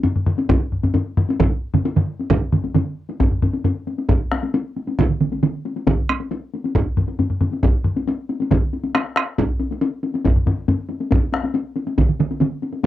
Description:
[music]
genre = japanese traditional, taiko drum ensemble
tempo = 136 BPM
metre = 4/4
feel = straight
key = none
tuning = none
[part]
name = solo taiko drums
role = percussion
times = 0.0-11.4 s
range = none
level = -21 LUFS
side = left 1 dB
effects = none
[part]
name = taiko ensemble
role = percussion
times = 0.0-12.9 s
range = none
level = -23 LUFS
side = left 4 dB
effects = none
[part]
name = taiko ensemble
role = percussion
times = 0.5-12.9 s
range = none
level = -20 LUFS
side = right 1 dB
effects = none
[part]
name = solo taiko drums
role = percussion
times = 1.4-12.9 s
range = none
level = -20 LUFS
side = right 6 dB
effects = none
[sound]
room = light reverb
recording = dry, close 1970s-style studio recording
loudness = -18 LUFS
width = side -13 dB against mid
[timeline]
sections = 0.0-3.2 A section; 3.2-12.9 B section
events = speeding up 0.0-12.9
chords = none

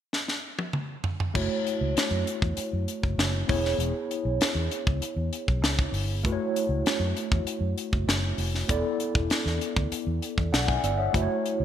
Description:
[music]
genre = polished 1980s jazz-funk pop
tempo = 98 BPM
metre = 4/4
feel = straight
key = F# minor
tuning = A4 = 437 Hz
[part]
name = tight funk drum kit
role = drums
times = 0.1-11.6 s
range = crash cymbal, hi-hat, kick drum, snare drum, toms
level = -28 LUFS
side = equal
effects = gated reverb
[part]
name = tine electric piano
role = accompaniment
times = 1.3-11.6 s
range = A3 to G#5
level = -29 LUFS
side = equal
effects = medium stereo tremolo, analog chorus
[part]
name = vintage muted fingered electric bass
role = bass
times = 1.3-11.6 s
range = E1 to F#2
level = -29 LUFS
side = equal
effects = none
[sound]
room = moderate lush hall reverb, RT60 2.3 s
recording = bright 1980s-style digital production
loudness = -25 LUFS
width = side -10 dB against mid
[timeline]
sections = 0.0-1.3 A section; 1.3-11.1 B section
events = drum fill 0.1-1.3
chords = 0.0 N.C.; 1.3 F#m7; 3.5 C#m7/E; 6.2 F#m7; 8.7 E7sus4; 11.1 F#m7

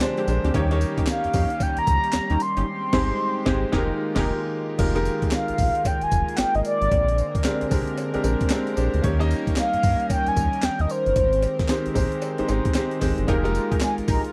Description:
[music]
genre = R&B, new jack swing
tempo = 113 BPM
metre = 4/4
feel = swing 63% on 16ths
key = F minor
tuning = A4 = 440 Hz
[part]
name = warm baby grand piano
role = accompaniment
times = 0.0-14.3 s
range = Ab3 to Eb5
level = -30 LUFS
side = equal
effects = none
[part]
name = chorused pulse-width pad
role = sustained chords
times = 0.0-14.3 s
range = D3 to Bb4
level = -33 LUFS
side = equal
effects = none
[part]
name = breakbeat sampler-style drum kit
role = drums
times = 0.0-14.3 s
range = crash cymbal, handclaps, hi-hat, kick drum, snare drum, tambourine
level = -28 LUFS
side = equal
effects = none
[part]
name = cowbell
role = percussion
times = 0.0-14.0 s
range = none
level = -41 LUFS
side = equal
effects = none
[part]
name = funky polysynth comp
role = stabs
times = 0.2-4.3, 13.3-14.2 s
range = Ab3 to Bb4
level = -32 LUFS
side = equal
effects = chorus, tape echo
[part]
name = round analog bass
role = bass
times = 0.3-14.2 s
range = F1 to G2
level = -27 LUFS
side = equal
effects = none
[part]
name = mellow horn-like synth lead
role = melody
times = 1.1-14.2 s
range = C5 to C6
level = -27 LUFS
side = equal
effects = chorus
[sound]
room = little or no reverb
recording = dry, close 1970s-style studio recording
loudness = -23 LUFS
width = mono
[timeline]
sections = 0.0-4.8 A section; 4.8-14.3 A section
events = grand piano fill 0.0-0.5; band accent 2.7-4.8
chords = 0.0 Bb13; 0.5 Eb7; 2.7 Abmaj7; 3.7 Fm11; 6.9 Bb13; 9.0 Eb7; 11.2 Abmaj7; 13.3 Fm11

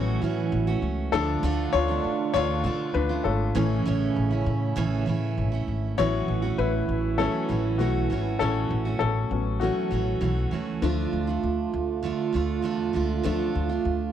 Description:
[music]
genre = pop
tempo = 99 BPM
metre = 4/4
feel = straight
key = A major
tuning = A4 = 441 Hz
[part]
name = warm upright piano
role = accompaniment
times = 0.0-14.1 s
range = E3 to C#5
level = -28 LUFS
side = left 8 dB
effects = none
[part]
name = picked steel-string acoustic guitar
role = riff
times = 0.0-14.1 s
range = A2 to F#4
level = -30 LUFS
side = right 5 dB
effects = none
[part]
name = upright bass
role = bass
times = 0.0-14.1 s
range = G#1 to D3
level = -28 LUFS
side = left 1 dB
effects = none
[part]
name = mellow French horn section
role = second line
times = 0.2-14.1 s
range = C#3 to F#4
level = -30 LUFS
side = right 8 dB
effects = none
[sound]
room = light reverb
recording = dry, close 1970s-style studio recording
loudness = -23 LUFS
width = side -10 dB against mid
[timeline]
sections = 0.0-6.0 A section; 6.0-14.1 B section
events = upright piano solo 0.0-6.0, 6.0-14.1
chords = 0.0 A6; 1.1 Dm; 3.6 A; 6.0 A6; 10.8 Dm

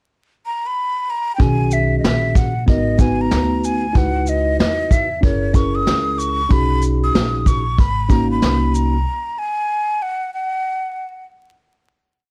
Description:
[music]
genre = hip hop, jazz-hop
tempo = 94 BPM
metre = 4/4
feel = swing 64% on 16ths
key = B major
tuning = A4 = 444 Hz
[part]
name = breathy mellow silver concert flute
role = melody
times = 0.5-11.3 s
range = C#5 to D#6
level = -24 LUFS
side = equal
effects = plate reverb
[part]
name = mellow tine electric piano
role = accompaniment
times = 1.4-9.0 s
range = D#3 to B4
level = -24 LUFS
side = equal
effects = plate reverb
[part]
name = upright bass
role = bass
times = 1.4-9.0 s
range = F#1 to E2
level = -23 LUFS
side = equal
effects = none
[part]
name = vintage brush drum kit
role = drums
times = 1.4-8.9 s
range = hi-hat, kick drum, shaker, snare drum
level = -19 LUFS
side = equal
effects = none
[sound]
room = light reverb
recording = dark, warm production, vinyl crackle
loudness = -18 LUFS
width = mono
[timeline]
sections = 0.0-1.4 pickup bar; 1.4-11.6 A section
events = break 9.1-11.6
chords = 0.0 N.C.; 1.4 B69; 2.7 G#m7; 4.0 C#m11; 5.2 F#9; 6.5 B69

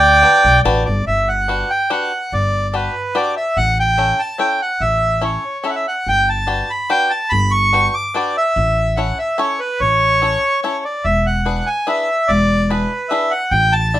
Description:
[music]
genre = musette waltz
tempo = 144 BPM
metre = 3/4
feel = straight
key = unclear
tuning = A4 = 440 Hz
[part]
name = accordion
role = melody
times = 0.0-14.0 s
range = B4 to D6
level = -15 LUFS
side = right 1 dB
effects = none
[part]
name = upright bass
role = bass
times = 0.0-14.0 s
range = E1 to D2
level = -19 LUFS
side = equal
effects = none
[part]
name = bluegrass banjo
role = accompaniment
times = 0.2-14.0 s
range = C#4 to D5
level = -22 LUFS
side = left 4 dB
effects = none
[sound]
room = light reverb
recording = minimal, uncompressed stereo recording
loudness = -14 LUFS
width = side -13 dB against mid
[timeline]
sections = 0.0-1.1 A section; 1.1-14.0 B section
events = none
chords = 0.0 Gmaj7; 3.6 A; 6.1 Gmaj7; 8.6 A; 11.0 E7

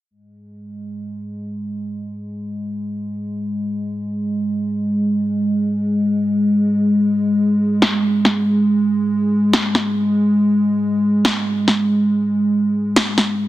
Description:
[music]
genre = deep dubstep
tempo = free time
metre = none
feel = none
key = unclear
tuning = A4 = 438 Hz
[part]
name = dark analog pad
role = sustained chords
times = 0.7-13.5 s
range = G#3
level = -17 LUFS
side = equal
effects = chorus
[part]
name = electronic snare drum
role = drums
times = 7.8-13.3 s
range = none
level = -17 LUFS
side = equal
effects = overdrive, low-pass filter on snare
[sound]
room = wet echo chamber reverb, RT60 1.4 s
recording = dense, heavily limited modern master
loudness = -16 LUFS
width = side -15 dB against mid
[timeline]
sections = 0.1-13.5 A section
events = none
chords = none

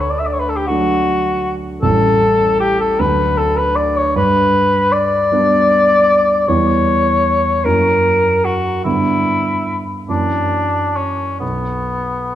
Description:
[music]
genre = classical, romantic duo for cor anglais and grand piano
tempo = 40-53 BPM (dotted quarters)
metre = 6/8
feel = rubato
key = unclear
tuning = A4 = 441 Hz
[part]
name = dark cor anglais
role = melody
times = 0.0-12.3 s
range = B3 to E5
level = -14 LUFS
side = left 2 dB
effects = none
[part]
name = dark concert grand piano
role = accompaniment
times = 0.0-12.3 s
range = A1 to E4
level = -18 LUFS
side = right 3 dB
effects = none
[sound]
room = wet recital hall reverb, RT60 1.8 s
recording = none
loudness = -13 LUFS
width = side -12 dB against mid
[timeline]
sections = 0.0-12.3 A section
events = none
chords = 0.0 D; 1.8 A7; 3.0 D; 4.1 G; 6.5 C#m7b5/E; 7.7 F#7; 8.8 G; 10.1 F#7; 11.4 N.C.

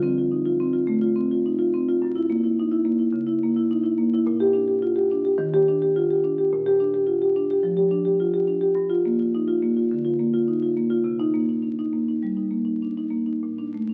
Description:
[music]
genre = classical, contemporary piece for solo marimba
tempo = 106 BPM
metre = 4/4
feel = rubato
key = Bb major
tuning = A4 = 440 Hz
[part]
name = marimba with soft mallets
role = solo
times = 0.0-13.9 s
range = Gb2 to G4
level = -22 LUFS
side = equal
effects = none
[sound]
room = moderate stone room reverb, RT60 1.1 s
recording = very old 78 rpm record, vinyl crackle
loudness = -23 LUFS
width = mono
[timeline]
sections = 0.0-13.9 A section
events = none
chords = 0.0 Dm7; 2.0 Gb7; 4.3 Bb6; 5.4 Ebmaj7; 6.5 Bb6; 8.8 Gm7; 11.1 Cm9; 13.4 Bbmaj7

